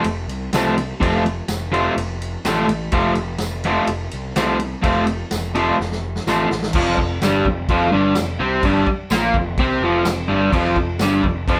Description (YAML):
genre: garage rock duo or trio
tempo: 126 BPM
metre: 4/4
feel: straight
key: F major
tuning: A4 = 436 Hz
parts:
  - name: raw garage guitar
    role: riff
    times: 0.0-11.6 s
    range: F2 to C4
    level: -20 LUFS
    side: equal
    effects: overdrive
  - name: fuzz picked electric bass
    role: bass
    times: 0.0-11.6 s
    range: F1 to C2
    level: -28 LUFS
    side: equal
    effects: overdrive
  - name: vintage drum kit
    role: drums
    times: 0.0-11.6 s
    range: crash cymbal, kick drum, ride cymbal, snare drum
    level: -27 LUFS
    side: equal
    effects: none
  - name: tambourine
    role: percussion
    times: 0.5-11.1 s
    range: none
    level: -39 LUFS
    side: equal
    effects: none
room: moderate studio reverb, RT60 0.7 s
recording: band playing live in one room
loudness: -19 LUFS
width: mono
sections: 0.0-6.7 A section; 6.7-11.6 B section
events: drum fill 5.8-6.7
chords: 0.0 F; 6.7 F5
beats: 0.06 0.54 | 1.02 1.50 1.97 2.45 | 2.93 3.40 3.88 4.36 | 4.83 5.31 5.79 6.26 | 6.74 7.21 7.69 8.16 | 8.63 9.11 9.58 10.06 | 10.53 11.00 11.48